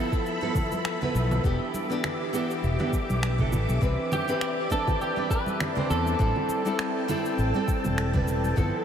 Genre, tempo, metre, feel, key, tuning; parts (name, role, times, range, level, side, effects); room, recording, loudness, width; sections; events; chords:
sunset chillout; 101 BPM; 4/4; swing 56% on 16ths; A4 = 440 Hz
nylon-string guitar; accompaniment; 0.0-8.8 s; E3 to C5; -29 LUFS; equal; auto-pan, tape echo
soft string machine; sustained chords; 0.0-8.8 s; G4 to D6; -32 LUFS; equal; ensemble chorus
electronic kick drum; drums; 0.1-8.7 s; -27 LUFS; equal; small room ambience
electronic shaker, congas and finger snaps; drums; 0.1-8.7 s; -34 LUFS; right 1 dB; small room ambience
congas; percussion; 0.4-8.5 s; -36 LUFS; right 2 dB
fretless electric bass; bass; 1.1-8.7 s; E1 to E2; -26 LUFS; equal; ensemble chorus
electric guitar at the edge of break-up; melody; 4.1-7.6 s; G4 to B4; -30 LUFS; right 1 dB; lush chorus, diffuse ambient delay
wet huge ambient reverb, RT60 8.1 s; dreamy mix soaked in reverb; -24 LUFS; side -8 dB against mid
0.0-8.8 A section
0.0 G13 (rootless); 1.4 Em7; 3.8 Cmaj9; 6.2 Am7